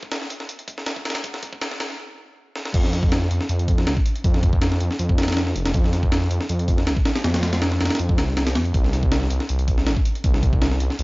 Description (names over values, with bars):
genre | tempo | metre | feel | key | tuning
drum and bass, jungle | 160 BPM | 4/4 | straight | unclear | A4 = 440 Hz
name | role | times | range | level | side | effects
breakbeat sampler-style drum kit | drums | 0.0-11.0 s | crash cymbal, hi-hat, kick drum, snare drum | -21 LUFS | equal | high-pass filter on hats, high-pass filter on kick, high-pass filter on snare, high-pass filter on cymbals
detuned saw bass | bass | 2.7-11.0 s | F1 to F2 | -22 LUFS | equal | tube saturation
room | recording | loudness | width
little or no reverb | dry, gritty hardware recording, nothing above 7.5 kHz | -19 LUFS | side -23 dB against mid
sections
0.0-2.7 A section; 2.7-11.0 B section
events
build-up 0.0-2.7; stop 2.0-2.7; drum fill 2.6; drop 2.7-11.0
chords
none